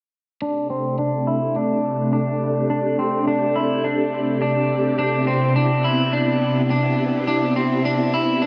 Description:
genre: dream pop.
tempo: 105 BPM.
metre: 4/4.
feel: straight.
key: unclear.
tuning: A4 = 440 Hz.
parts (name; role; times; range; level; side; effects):
phased string machine; sustained chords; 0.4-8.5 s; C3 to G4; -23 LUFS; equal; ensemble chorus, phaser, low-pass filter.
electric guitar at the edge of break-up; arpeggios; 0.4-8.5 s; C4 to E4; -24 LUFS; equal; subtle chorus, low-pass filter, tape echo.
room: wet plate reverb, RT60 2.8 s.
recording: dreamy mix soaked in reverb.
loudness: -21 LUFS.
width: mono.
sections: 0.4-8.5 A section.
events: filter sweep 0.4-8.5.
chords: 0.4 D7sus4; 5.0 Cmaj7.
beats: | 0.42 0.99 1.56 2.13 | 2.70 3.27 3.85 4.42 | 4.99 5.56 6.13 6.70 | 7.27 7.84 8.42.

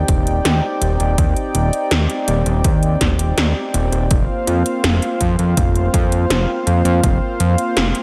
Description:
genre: synthwave.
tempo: 82 BPM.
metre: 4/4.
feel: straight.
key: unclear.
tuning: A4 = 440 Hz.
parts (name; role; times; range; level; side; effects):
warm analog pad; sustained chords; 0.0-8.0 s; Bb3 to G5; -23 LUFS; equal; chorus, sidechain pumping.
fat analog bass; bass; 0.0-7.9 s; Eb1 to F2; -19 LUFS; equal; none.
80s electronic pad drums; drums; 0.1-8.0 s; hi-hat, snare drum; -23 LUFS; equal; studio reverb.
electronic kick drum; drums; 0.1-7.2 s; none; -21 LUFS; equal; studio reverb.
room: light reverb.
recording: none.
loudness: -17 LUFS.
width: mono.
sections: 0.0-8.0 A section.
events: none.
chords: 0.0 Cmadd9/Eb; 4.1 Fsus4.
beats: 0.45 | 1.18 1.91 2.64 3.38 | 4.11 4.84 5.57 6.30 | 7.04 7.77.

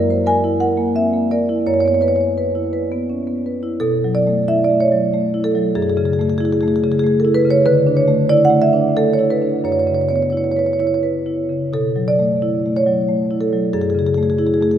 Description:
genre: classical, contemporary piece for solo marimba.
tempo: 82-96 BPM.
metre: 3/4.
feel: rubato.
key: B minor.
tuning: A4 = 440 Hz.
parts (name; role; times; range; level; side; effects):
marimba with medium mallets; solo; 0.0-14.8 s; F#2 to G#5; -15 LUFS; equal; none.
room: wet cathedral reverb, RT60 5.4 s.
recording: minimal, uncompressed stereo recording.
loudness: -15 LUFS.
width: side -10 dB against mid.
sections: 0.0-3.8 A section; 3.8-14.8 B section.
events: none.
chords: 0.0 F#aug7; 1.7 F#7sus4; 3.8 B9sus4; 5.8 F#m9; 7.7 Dsus2; 9.7 F#7sus4; 11.7 Bm11; 13.7 F#m9.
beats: 0.26 0.95 | 1.67 2.39 3.09 | 3.80 4.48 5.13 | 5.76 6.41 7.05 | 7.68 8.32 8.98 | 9.66 10.35 11.03 | 11.73 12.42 13.08 | 13.73 14.38.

